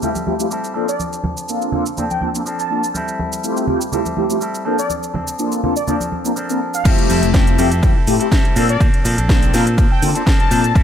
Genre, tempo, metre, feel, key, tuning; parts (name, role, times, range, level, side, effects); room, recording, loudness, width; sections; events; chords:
filtered disco house; 123 BPM; 4/4; swing 54% on 16ths; A4 = 439 Hz
mellow synth brass; accompaniment; 0.0-10.6 s; F3 to Bb4; -20 LUFS; left 1 dB; chorus, phaser, sidechain pumping, low-pass filter
electric guitar with an envelope filter; riff; 0.0-10.8 s; F3 to A4; -24 LUFS; equal; sidechain pumping, low-pass filter
house drum kit; drums; 0.0-10.8 s; cabasa, crash cymbal, hi-hat, ride cymbal, snare drum; -25 LUFS; right 1 dB; overdrive
tambourine and congas; percussion; 0.0-6.8 s; -26 LUFS; right 2 dB; sidechain pumping on perc, low-pass filter on perc
analog synth brass; melody; 0.9-10.8 s; D5 to A5; -25 LUFS; equal; chorus, sidechain pumping, low-pass filter
modern bright fingered electric bass; bass; 6.9-10.8 s; F1 to D3; -18 LUFS; equal; sidechain pumping, low-pass filter
electronic kick drum; drums; 6.9-10.8 s; -15 LUFS; equal; overdrive
light reverb; -15 LUFS; side -9 dB against mid
0.0-6.9 A section; 6.9-10.8 B section
filter sweep 0.0-6.9; drop 6.9-10.8
0.0 Fmaj9; 0.8 Bbmaj9; 3.0 Fmaj9; 4.7 Bbmaj9; 6.9 Fmaj9; 8.6 Bbmaj9